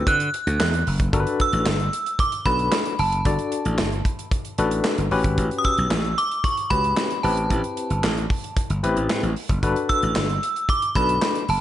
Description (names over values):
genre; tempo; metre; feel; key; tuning
early-eighties boogie funk; 113 BPM; 4/4; straight; G major; A4 = 440 Hz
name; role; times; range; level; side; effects
metallic FM bell; melody; 0.0-11.6 s; A5 to F#6; -24 LUFS; right 1 dB; chorus
barky tine electric piano; accompaniment; 0.0-11.4 s; C4 to D5; -26 LUFS; left 4 dB; medium tremolo
slap bass; bass; 0.0-11.6 s; F#1 to D3; -24 LUFS; equal; none
modern studio drum kit; drums; 0.1-11.6 s; handclaps, hi-hat, kick drum, snare drum; -25 LUFS; equal; gated reverb
room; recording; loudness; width
light reverb, studio ambience; nothing above 10.9 kHz; -20 LUFS; side -12 dB against mid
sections
0.0-1.1 A section; 1.1-11.6 B section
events
none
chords
0.0 D13; 1.1 Gmaj9; 5.1 A13; 7.2 Am9; 9.6 Gmaj9